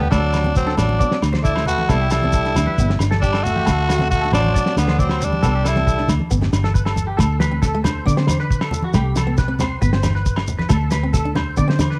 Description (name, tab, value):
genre	highlife guitar band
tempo	136 BPM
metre	4/4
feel	straight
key	D mixolydian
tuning	A4 = 439 Hz
part	breathy tenor saxophone	melody	0.0-6.1 s	B3 to F#4	-24 LUFS	equal	none
part	bright trombone	second line	0.0-6.1 s	D3 to A3	-30 LUFS	equal	none
part	clean electric guitar	arpeggios	0.0-12.0 s	F#4 to D5	-29 LUFS	equal	ensemble chorus, tape echo
part	vintage muted fingered electric bass	bass	0.0-12.0 s	G1 to D3	-23 LUFS	equal	none
part	congas	percussion	0.0-11.9 s	none	-29 LUFS	equal	none
part	fingerpicked plugged-in steel-string acoustic guitar	accompaniment	0.1-12.0 s	A3 to D4	-29 LUFS	equal	none
part	cloth-damped thuddy drum kit	drums	0.1-12.0 s	kick drum, snare drum	-24 LUFS	equal	cassette tape
part	agogo bells	percussion	0.1-11.9 s	none	-34 LUFS	equal	none
part	shekere	percussion	0.1-11.9 s	none	-30 LUFS	equal	none
room	light reverb, small room ambience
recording	home recording on cassette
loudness	-18 LUFS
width	mono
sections	0.0-7.2 A section; 7.2-12.0 B section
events	none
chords	0.1 D; 1.9 C; 2.8 G; 3.7 D; 5.4 C; 6.3 G; 7.2 D5; 8.9 C5; 9.8 G; 10.7 D5